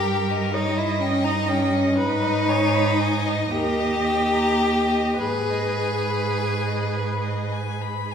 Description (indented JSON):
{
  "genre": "classical, slow romantic movement for string quartet",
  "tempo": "34-42 BPM (dotted quarters)",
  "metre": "6/8",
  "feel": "rubato",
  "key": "G# minor",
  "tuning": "A4 = 440 Hz",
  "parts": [
    { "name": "clear violin", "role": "melody", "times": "0.0-8.1 s", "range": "A#4 to B5", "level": "-29 LUFS", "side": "left 6 dB", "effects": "none" },
    { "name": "clear violin", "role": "second line", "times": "0.0-8.1 s", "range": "C#4 to G#4", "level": "-23 LUFS", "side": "left 2 dB", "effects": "none" },
    { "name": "rich viola", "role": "accompaniment", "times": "0.0-7.8 s", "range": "A#4 to D#5", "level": "-29 LUFS", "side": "right 3 dB", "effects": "none" },
    { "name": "clear cello", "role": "bass", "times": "0.0-8.1 s", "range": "D#2 to G#2", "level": "-26 LUFS", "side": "right 4 dB", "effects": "none" }
  ],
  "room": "wet recital hall reverb, RT60 1.7 s",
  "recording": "heard from further back in the room",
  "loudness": "-20 LUFS",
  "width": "side -7 dB against mid",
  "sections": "0.0-8.1 A section",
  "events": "none",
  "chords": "0.0 D#7/G; 2.0 G#m; 3.5 D#; 5.2 G#m",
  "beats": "0.55 | 1.99 3.52 | 5.20 6.95"
}